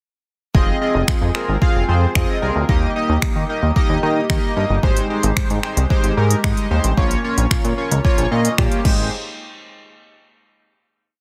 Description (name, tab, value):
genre	dance-pop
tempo	112 BPM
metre	4/4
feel	straight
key	Ab major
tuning	A4 = 440 Hz
part	chorused polysynth	accompaniment	0.5-9.1 s	Ab3 to F5	-23 LUFS	equal	sidechain pumping
part	chorused synth bass	bass	0.5-9.1 s	F1 to Eb3	-21 LUFS	equal	sidechain pumping
part	deep house drum kit	drums	0.5-9.0 s	crash cymbal, finger snaps, hi-hat, kick drum	-21 LUFS	equal	soft clipping on snare
room	light reverb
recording	dense, heavily limited modern master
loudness	-18 LUFS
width	mono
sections	0.5-9.1 verse; 9.1-11.2 final hit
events	none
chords	0.5 Fm7; 2.7 Eb; 4.8 Abmaj7; 7.0 Bbm; 8.8 Abmaj7; 9.1 N.C.